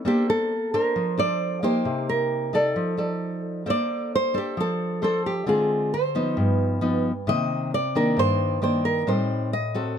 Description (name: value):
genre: bossa nova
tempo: 133 BPM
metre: 4/4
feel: straight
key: Bb major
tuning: A4 = 445 Hz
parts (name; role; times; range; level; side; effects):
- nylon-string guitar; accompaniment; 0.0-10.0 s; G2 to D5; -24 LUFS; equal; none
- nylon-string guitar; melody; 0.1-9.9 s; G4 to Eb5; -24 LUFS; right 1 dB; none
room: little or no reverb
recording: close, detailed microphones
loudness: -22 LUFS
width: side -8 dB against mid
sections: 0.0-3.7 A section; 3.7-10.0 B section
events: none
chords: 0.1 Bbmaj9; 1.9 Cm7; 2.8 F6; 3.7 Bbmaj9; 5.5 Dm7b5; 6.4 Gaug7; 7.3 Cm9; 9.1 Am7b5